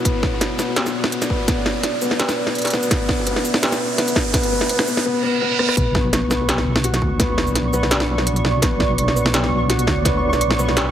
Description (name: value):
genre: half-time drum and bass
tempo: 168 BPM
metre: 4/4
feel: half-time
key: B minor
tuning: A4 = 436 Hz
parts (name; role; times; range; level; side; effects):
- deep dark ambient pad; sustained chords; 0.0-10.9 s; B3 to E5; -26 LUFS; right 2 dB; chorus, built-in reverb, sidechain pumping
- felt-muted upright piano; arpeggios; 0.0-10.9 s; B3 to F#4; -23 LUFS; left 3 dB; low-pass filter, tape echo
- deep soft wobble bass; bass; 0.0-10.9 s; B1 to D2; -24 LUFS; equal; chorus, high-pass filter
- riser and reverse cymbal; sound effects; 0.0-5.8 s; none; -26 LUFS; right 4 dB; none
- electronic kick drum; drums; 0.1-10.1 s; none; -22 LUFS; equal; distortion
- industrial drum kit; drums; 0.1-10.8 s; hi-hat, rim click, shaker, snare drum; -21 LUFS; equal; none
- pulsing gated texture; texture; 5.8-10.9 s; C#6; -27 LUFS; right 2 dB; chorus, built-in reverb
room: moderate digital room reverb, RT60 1.1 s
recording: heavily compressed radio sound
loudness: -16 LUFS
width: side -10 dB against mid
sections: 0.0-5.8 A section; 5.8-10.9 B section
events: build-up 0.0-5.8; riser 0.0-5.1; reverse cymbal 5.1-5.8; drum fill 5.6; drop 5.8-10.9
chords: 0.0 Bmadd9